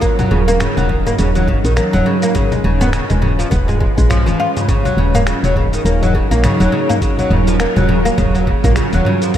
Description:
organic downtempo; 103 BPM; 4/4; swing 58% on 16ths; Eb minor; A4 = 440 Hz
bowed-like drone; sustained chords; 0.0-9.4 s; Gb3 to Cb5; -20 LUFS; right 1 dB; built-in reverb, sidechain pumping
oud; arpeggios; 0.0-9.4 s; Db3 to F4; -18 LUFS; left 1 dB; tape echo
dusty soul sampler-style drum kit; drums; 0.0-9.4 s; cabasa, finger snaps, hi-hat, toms; -22 LUFS; equal
electronic kick drum; drums; 0.0-9.4 s; -18 LUFS; equal
congas and bongos; percussion; 0.2-9.0 s; -25 LUFS; left 2 dB
woody FM bass; bass; 0.3-9.0 s; Eb1 to Bb1; -16 LUFS; equal
moderate lush hall reverb, RT60 2.4 s; dreamy mix soaked in reverb; -12 LUFS; side -10 dB against mid
0.0-9.4 A section
0.0 Ebm7; 2.4 Db7/Eb; 4.7 Ebm7; 7.0 Gbmaj7/Eb

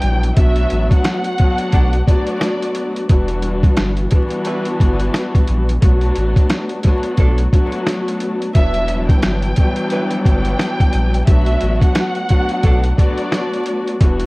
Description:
hip hop, boom-bap hip-hop; 88 BPM; 4/4; swing 60% on 16ths; A4 = 440 Hz
rich studio violin section; melody; 0.0-3.1, 8.6-14.0 s; D5 to G5; -24 LUFS; right 1 dB; high-pass filter, low-pass filter, ping-pong delay
dark studio string section; accompaniment; 0.0-14.3 s; E3 to F#4; -20 LUFS; left 1 dB; cassette tape, high-pass filter, low-pass filter
sub bass with octave; bass; 0.0-14.3 s; E1 to B1; -18 LUFS; equal
boom bap sampler-style drum kit; drums; 0.0-14.3 s; hi-hat, kick drum, snare drum; -14 LUFS; equal
clear saxophone section; stabs; 1.7-12.9 s; F#3 to B4; -29 LUFS; right 1 dB; high-pass filter, low-pass filter, ping-pong delay
studio ambience; worn, warbling old tape, cassette tape, vinyl crackle, warbly pitch drift; -14 LUFS; side -23 dB against mid
0.0-14.3 A section
0.4 Bm7; 3.1 Em7; 5.8 Bm7; 8.6 Em7; 11.3 Bm7

